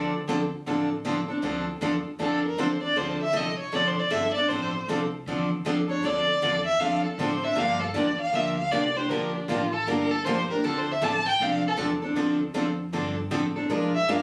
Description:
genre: acoustic string swing (jazz manouche)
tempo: 156 BPM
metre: 4/4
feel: swing 63% on 8ths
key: D minor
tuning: A4 = 440 Hz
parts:
  - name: warm violin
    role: melody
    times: 0.0-14.2 s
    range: D4 to A5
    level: -28 LUFS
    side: equal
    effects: none
  - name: picked steel-string acoustic guitar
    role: accompaniment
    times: 0.0-14.2 s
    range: D3 to Bb4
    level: -31 LUFS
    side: equal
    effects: none
  - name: picked steel-string acoustic guitar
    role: accompaniment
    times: 0.0-14.2 s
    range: D3 to Bb4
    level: -34 LUFS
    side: equal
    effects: none
  - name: upright bass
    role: bass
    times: 0.0-14.2 s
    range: F1 to Bb2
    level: -40 LUFS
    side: equal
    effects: none
room: wet studio reverb, RT60 0.6 s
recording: recorded on a phone in the room, studio reverb, compression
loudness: -26 LUFS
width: mono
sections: 0.0-1.4 A section; 1.4-14.2 B section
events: violin solo 1.4-14.2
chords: 0.0 Dm7; 7.6 Gm7; 10.6 Dm7; 13.7 Bb7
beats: 0.28 0.67 1.05 | 1.43 1.81 2.20 2.58 | 2.97 3.35 3.73 4.12 | 4.50 4.88 5.27 5.65 | 6.04 6.42 6.80 7.19 | 7.57 7.96 8.34 8.72 | 9.11 9.49 9.87 10.26 | 10.64 11.02 11.41 11.79 | 12.17 12.55 12.94 13.32 | 13.70 14.09

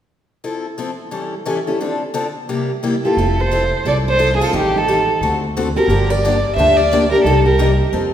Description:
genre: acoustic string swing (jazz manouche)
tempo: 176 BPM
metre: 4/4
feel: swing 62% on 8ths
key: F major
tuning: A4 = 440 Hz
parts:
  - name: picked steel-string acoustic guitar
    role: accompaniment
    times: 0.4-8.1 s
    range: A2 to A4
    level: -19 LUFS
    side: left 2 dB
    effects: none
  - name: picked steel-string acoustic guitar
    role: second line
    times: 3.0-7.9 s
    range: Eb4 to C5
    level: -22 LUFS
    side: right 2 dB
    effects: none
  - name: dark violin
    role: melody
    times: 3.1-7.9 s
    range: G4 to E5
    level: -17 LUFS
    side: right 1 dB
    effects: none
  - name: upright bass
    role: bass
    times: 3.2-8.1 s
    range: F1 to F2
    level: -19 LUFS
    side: equal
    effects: none
room: wet recital hall reverb, RT60 1.8 s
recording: recorded in a church or concert hall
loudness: -14 LUFS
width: side -10 dB against mid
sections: 0.4-3.2 A section; 3.2-8.1 B section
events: none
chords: 0.4 Fmaj7; 1.1 A7; 1.8 Dm7; 2.5 C7; 3.2 Fmaj7; 4.5 Am7b5; 5.2 D7; 5.9 Gm7; 7.3 Cm7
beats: | 0.44 0.78 1.12 1.47 | 1.81 2.15 2.49 2.83 | 3.17 3.51 3.85 4.19 | 4.53 4.87 5.21 5.55 | 5.89 6.23 6.57 6.91 | 7.25 7.59 7.94

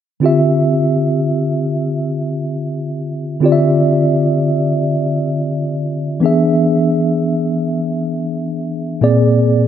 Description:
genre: R&B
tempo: free time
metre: none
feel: none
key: D dorian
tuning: A4 = 441 Hz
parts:
  - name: mellow tine electric piano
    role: accompaniment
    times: 0.2-9.7 s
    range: Bb2 to E5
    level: -14 LUFS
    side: equal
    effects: medium stereo tremolo
room: moderate lush hall reverb, RT60 3.2 s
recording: none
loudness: -14 LUFS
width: side -9 dB against mid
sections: 0.2-9.7 A section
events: none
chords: 0.2 Dm11; 6.2 E7; 9.0 Bb9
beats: free time

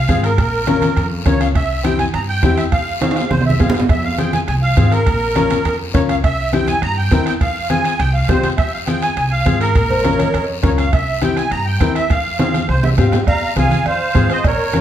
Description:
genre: latin, cumbia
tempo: 205 BPM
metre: 4/4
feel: straight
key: F harmonic minor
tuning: A4 = 436 Hz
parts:
  - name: musette accordion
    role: melody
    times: 0.0-14.8 s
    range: Bb4 to Bb5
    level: -20 LUFS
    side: right 2 dB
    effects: none
  - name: upright bass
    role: bass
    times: 0.0-14.8 s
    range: Bb1 to Ab2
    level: -20 LUFS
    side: equal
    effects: none
  - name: clear upright piano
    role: accompaniment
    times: 0.1-14.8 s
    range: C4 to Bb4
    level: -21 LUFS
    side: left 6 dB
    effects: none
  - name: bombo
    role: percussion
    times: 0.1-14.8 s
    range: none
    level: -20 LUFS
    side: right 1 dB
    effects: none
  - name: congas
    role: percussion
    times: 0.1-14.8 s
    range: none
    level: -23 LUFS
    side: right 2 dB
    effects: none
  - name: guiro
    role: percussion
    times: 0.1-14.8 s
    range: none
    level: -32 LUFS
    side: left 5 dB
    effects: none
  - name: timbales and cowbell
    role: percussion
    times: 0.1-14.6 s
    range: none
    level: -26 LUFS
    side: right 4 dB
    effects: none
  - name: growling clarinet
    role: second line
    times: 9.9-10.5, 14.7-14.8 s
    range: Bb4 to Db5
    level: -22 LUFS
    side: left 1 dB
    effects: none
room: wet large studio reverb, RT60 1.1 s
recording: heard from further back in the room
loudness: -14 LUFS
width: side -10 dB against mid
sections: 0.0-3.9 A section; 3.9-13.3 A section; 13.3-14.8 B section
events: drum fill 3.0-3.9, 12.4-13.3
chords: 0.4 Bbm; 1.6 C; 2.7 Fm; 5.1 Bbm; 6.2 C7; 7.4 Fm; 9.8 Bbm; 10.9 C7; 12.1 Fm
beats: 0.09 | 0.38 0.67 0.96 1.26 | 1.55 1.84 2.14 2.43 | 2.72 3.02 3.31 3.60 | 3.89 4.19 4.48 4.77 | 5.07 5.36 5.65 5.94 | 6.24 6.53 6.82 7.12 | 7.41 7.70 8.00 8.29 | 8.58 8.87 9.17 9.46 | 9.75 10.05 10.34 10.63 | 10.93 11.22 11.52 11.81 | 12.10 12.39 12.69 12.98 | 13.27 13.57 13.86 14.15 | 14.45 14.74

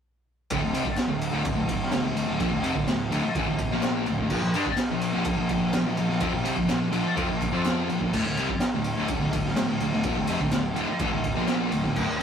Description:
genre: garage rock duo or trio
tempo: 126 BPM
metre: 4/4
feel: straight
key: D minor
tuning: A4 = 441 Hz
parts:
  - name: thick fuzz guitar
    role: riff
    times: 0.5-12.2 s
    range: D2 to F4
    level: -26 LUFS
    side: equal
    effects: distortion
  - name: picked electric bass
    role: bass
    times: 0.5-12.2 s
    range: D1 to G2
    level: -34 LUFS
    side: equal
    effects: tube saturation
  - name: raw garage drum kit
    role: drums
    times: 0.5-12.2 s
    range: crash cymbal, kick drum, ride cymbal, snare drum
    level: -27 LUFS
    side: equal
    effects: none
  - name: group handclap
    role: percussion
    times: 1.0-11.6 s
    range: none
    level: -41 LUFS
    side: left 2 dB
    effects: none
room: light reverb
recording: rough rehearsal-room recording, warm saturation, faint mains hum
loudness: -23 LUFS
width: side -7 dB against mid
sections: 0.5-12.2 A section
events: none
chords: 0.5 Dm; 4.3 Bb5; 8.1 Dm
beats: | 0.51 0.99 1.46 1.93 | 2.41 2.88 3.36 3.83 | 4.31 4.79 5.26 5.74 | 6.21 6.69 7.17 7.65 | 8.13 8.61 9.09 9.56 | 10.04 10.53 11.01 11.49 | 11.97

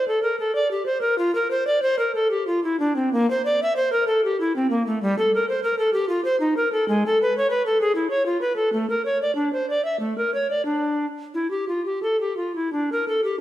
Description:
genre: classical, baroque-style fantasia for unaccompanied recorder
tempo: 82-100 BPM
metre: 3/4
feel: rubato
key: D minor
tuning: A4 = 440 Hz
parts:
  - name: bright bass recorder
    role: solo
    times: 0.0-13.4 s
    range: G3 to E5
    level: -20 LUFS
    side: equal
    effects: none
room: wet recital hall reverb, RT60 1.6 s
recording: minimal, uncompressed stereo recording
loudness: -20 LUFS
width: side -13 dB against mid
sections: 0.0-12.7 A section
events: none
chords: none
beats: 0.54 | 1.18 1.82 2.47 | 3.12 3.76 4.39 | 5.01 5.62 6.23 | 6.87 7.50 8.11 | 8.73 9.36 10.00 | 10.67 11.34 12.02 | 12.73

